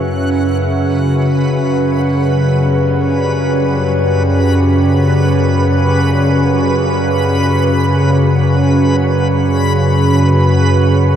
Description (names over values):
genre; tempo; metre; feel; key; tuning
dark ambient drone; free time; none; none; unclear; A4 = 440 Hz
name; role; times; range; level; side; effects
deep dark ambient pad; sustained chords; 0.0-11.2 s; C#4 to E5; -23 LUFS; left 3 dB; chorus, built-in reverb
organ-like drone; drone; 0.0-11.2 s; F#2 to C#3; -12 LUFS; equal; ensemble chorus, built-in reverb
backwards swelling texture; texture; 0.0-11.2 s; B4 to F#5; -20 LUFS; right 2 dB; built-in reverb
room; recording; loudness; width
moderate huge ambient reverb, RT60 8.9 s; dark, warm production; -11 LUFS; side -9 dB against mid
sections
0.0-11.2 A section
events
fade-out on ambient pad 0.0-11.2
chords
0.3 G/F#